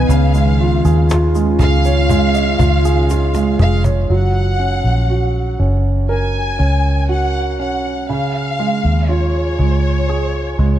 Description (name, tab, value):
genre	pop ballad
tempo	60 BPM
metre	4/4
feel	straight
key	F# major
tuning	A4 = 440 Hz
part	warm studio violin section	melody	0.0-10.8 s	C#5 to G#5	-22 LUFS	left 2 dB	none
part	clear grand piano	accompaniment	0.0-10.8 s	C#3 to D#5	-19 LUFS	right 4 dB	none
part	glassy FM pad	sustained chords	0.0-4.1 s	D#3 to E#4	-22 LUFS	equal	ensemble chorus, built-in reverb
part	vintage muted fingered electric bass	bass	0.0-10.8 s	E#1 to D#2	-15 LUFS	equal	none
part	cajon	drums	0.1-4.1 s	none	-20 LUFS	equal	none
part	tube shaker	percussion	0.1-4.1 s	none	-38 LUFS	left 10 dB	none
room	light reverb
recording	dark, warm production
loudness	-13 LUFS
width	side -12 dB against mid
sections	0.0-4.1 A section; 4.1-10.8 B section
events	drum fill 3.1-4.1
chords	0.1 C#add9; 4.1 F#add9; 8.1 C#